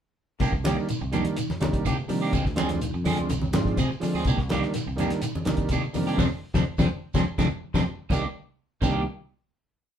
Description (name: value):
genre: afrobeat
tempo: 125 BPM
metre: 4/4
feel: straight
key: C minor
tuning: A4 = 441 Hz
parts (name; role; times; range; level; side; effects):
- clean electric guitar; arpeggios; 0.4-9.0 s; C3 to F3; -30 LUFS; left 4 dB; none
- electric guitar at the edge of break-up; stabs; 0.4-9.0 s; Eb3 to Ab4; -31 LUFS; right 4 dB; phaser
- fingered electric bass; bass; 0.4-9.0 s; C2 to D3; -31 LUFS; equal; none
- cloth-damped thuddy drum kit; drums; 0.4-8.9 s; crash cymbal, hi-hat, kick drum, snare drum; -29 LUFS; equal; none
- congas; percussion; 0.4-8.9 s; none; -31 LUFS; right 1 dB; none
- shekere; percussion; 0.4-8.9 s; none; -36 LUFS; right 4 dB; none
- combo organ; accompaniment; 0.6-9.1 s; Eb3 to D4; -30 LUFS; right 3 dB; none
room: moderate studio ambience, RT60 0.5 s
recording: band playing live in one room, lossy compression artefacts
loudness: -23 LUFS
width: side -9 dB against mid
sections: 0.4-8.1 groove; 8.1-10.0 final chord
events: band accent 6.2-8.1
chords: 0.4 Cm9; 2.3 Dm7b5; 4.3 Cm9; 6.2 Dm7b5; 8.1 Cm9